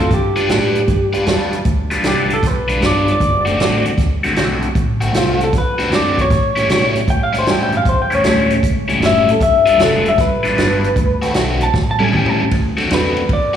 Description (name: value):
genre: electric blues shuffle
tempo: 155 BPM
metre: 4/4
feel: swing 67% on 8ths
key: unclear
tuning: A4 = 440 Hz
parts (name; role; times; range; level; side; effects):
- electric guitar through a small old amp; melody; 0.0-13.6 s; F4 to A5; -17 LUFS; left 1 dB; plate reverb, slapback echo
- cranked stack guitar; riff; 0.0-13.6 s; A2 to B4; -19 LUFS; left 2 dB; overdrive, phaser, slapback echo
- upright bass; bass; 0.0-13.6 s; F1 to B2; -20 LUFS; right 1 dB; none
- vintage drum kit; drums; 0.1-13.4 s; hi-hat, kick drum, ride cymbal, snare drum, toms; -19 LUFS; right 1 dB; none
room: light reverb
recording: live gig heard through the venue's PA, recital hall reverb, small room ambience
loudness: -13 LUFS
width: side -9 dB against mid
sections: 0.0-12.5 A section; 12.5-13.6 A section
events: clean electric guitar solo 0.0-12.5, 12.5-13.6; drum fill 11.7-12.5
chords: 0.1 G7; 3.2 D7; 6.3 A7; 9.4 G7; 11.0 D7; 11.7 A7; 12.5 D7